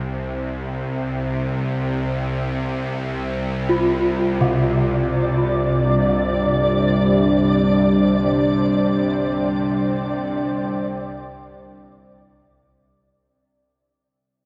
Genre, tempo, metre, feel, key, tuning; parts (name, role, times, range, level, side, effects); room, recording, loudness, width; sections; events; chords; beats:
dark ambient drone; free time; A4 = 440 Hz
bowed-like drone; drone; 0.0-13.3 s; C2 to C3; -26 LUFS; equal; built-in reverb
gamelan-type bronze metallophone; arpeggios; 3.7-11.1 s; C3 to F4; -24 LUFS; equal; analog delay
flickering grainy texture; texture; 4.6-13.2 s; D5; -27 LUFS; equal; built-in reverb, analog chorus
deep dark ambient pad; sustained chords; 5.4-13.2 s; G3 to G5; -22 LUFS; equal; chorus, built-in reverb
wet lush hall reverb, RT60 2.7 s; dreamy mix soaked in reverb; -20 LUFS; mono
0.0-13.1 A section
fade-in on synth drone 0.0-13.1; fade-out 7.2-13.1
0.0 Csus2
free time